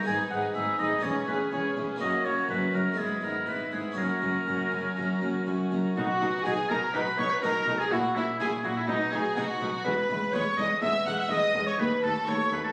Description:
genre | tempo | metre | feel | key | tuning
classical, baroque-style concerto movement with solo episodes | 123 BPM | 4/4 | straight | B major | A4 = 441 Hz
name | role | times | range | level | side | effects
warm chamber violin section | melody | 0.0-12.7 s | D#5 to F#6 | -40 LUFS | equal | none
warm oboe | melody | 0.0-12.7 s | D#4 to G#5 | -32 LUFS | equal | none
dark chamber violin section | second line | 0.0-12.7 s | D#4 to F#5 | -34 LUFS | equal | none
harpsichord | accompaniment | 0.0-12.7 s | D#2 to A4 | -37 LUFS | equal | none
warm chamber viola section | accompaniment | 0.0-12.6 s | G#3 to E4 | -38 LUFS | equal | none
rich chamber cello section | bass | 0.1-12.6 s | D#2 to B2 | -38 LUFS | equal | none
rich chamber double bass section | bass | 0.1-12.6 s | E1 to D#2 | -40 LUFS | equal | none
room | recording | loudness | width
wet recital hall reverb, RT60 1.6 s | recorded on a phone in the room, studio reverb, vinyl crackle, compression | -28 LUFS | mono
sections
0.0-6.0 A section; 6.0-12.7 B section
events
none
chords
0.1 G#m; 1.0 C#m7/E; 2.0 F#; 3.0 E/G#; 4.0 F#; 6.0 B; 7.9 F#7/A#; 8.9 B; 9.9 E; 11.8 B9/D#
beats
| 0.07 0.55 1.04 1.53 | 2.01 2.50 2.99 3.48 | 3.98 4.48 4.97 5.47 | 5.97 6.46 6.94 7.43 | 7.92 8.40 8.89 9.37 | 9.85 10.34 10.82 11.30 | 11.79 12.27

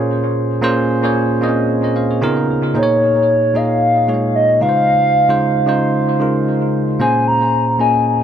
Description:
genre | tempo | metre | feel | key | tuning
amapiano | 113 BPM | 4/4 | swing 55% on 16ths | unclear | A4 = 441 Hz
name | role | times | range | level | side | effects
bell-like tine electric piano | accompaniment | 0.0-8.2 s | Bb2 to F5 | -15 LUFS | right 1 dB | tape echo
hollow clarinet-like synth lead | melody | 2.8-8.2 s | Db5 to Bb5 | -15 LUFS | left 1 dB | chorus, tape echo
room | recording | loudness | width
light reverb | echo-heavy mix | -13 LUFS | side -9 dB against mid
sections
0.0-8.2 A section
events
none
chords
0.0 Bbm9; 2.2 Db13; 2.7 Db69/Bb; 4.6 Dbmaj7; 7.0 Bbm9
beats
0.09 | 0.62 1.16 1.69 2.22 | 2.75 3.28 3.81 4.34 | 4.87 5.40 5.93 6.47 | 7.00 7.53 8.06

